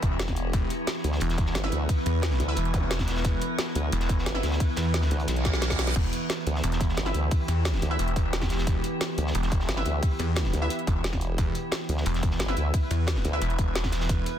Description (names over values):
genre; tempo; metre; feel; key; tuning
dark technical drum and bass; 177 BPM; 4/4; straight; E minor; A4 = 440 Hz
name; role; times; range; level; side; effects
metallic inharmonic drone; sustained chords; 0.0-14.4 s; E3 to B4; -32 LUFS; right 1 dB; chorus, built-in reverb, sidechain pumping
snarling distorted saw bass; bass; 0.0-14.2 s; E1 to E2; -28 LUFS; equal; distortion, tube saturation, sidechain pumping
crunchy breakbeat drum kit; drums; 0.0-14.3 s; hi-hat, snare drum; -39 LUFS; equal; high-pass filter on hats, high-pass filter on snare, high-pass filter on room
drum and bass drum kit; drums; 0.0-14.3 s; crash cymbal, hi-hat, snare drum; -32 LUFS; equal; none
electronic kick drum; drums; 0.0-14.2 s; none; -26 LUFS; equal; none
formant-sweep wobble bass; bass; 0.2-13.4 s; E1 to D2; -27 LUFS; equal; chorus
orchestra-hit-like synth stab; stabs; 1.6-13.5 s; E4 to E5; -35 LUFS; equal; built-in reverb, ping-pong delay
zap and reverse cymbal; sound effects; 2.7-2.8, 5.4-6.0 s; none; -34 LUFS; right 3 dB; none
room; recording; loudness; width
little or no reverb; dense, heavily limited modern master; -24 LUFS; side -10 dB against mid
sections
0.0-14.4 A section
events
reverse cymbal 5.4-6.0; drum fill 5.4-6.0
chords
0.0 Em